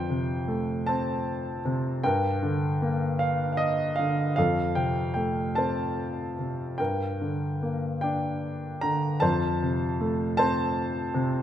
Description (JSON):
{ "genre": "classical, lyrical solo piano", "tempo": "50 BPM (dotted quarters)", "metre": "6/8", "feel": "uneven beats, rubato", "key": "unclear", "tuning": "A4 = 440 Hz", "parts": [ { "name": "warm grand piano", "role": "solo", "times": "0.0-11.4 s", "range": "F2 to Bb5", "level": "-25 LUFS", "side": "equal", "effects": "none" } ], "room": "moderate scoring stage reverb, RT60 1.9 s", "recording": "none", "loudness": "-25 LUFS", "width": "side -10 dB against mid", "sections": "0.0-11.4 A section", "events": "none", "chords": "0.0 Fadd9; 2.0 Gm; 4.4 F; 6.8 Gm; 9.2 F" }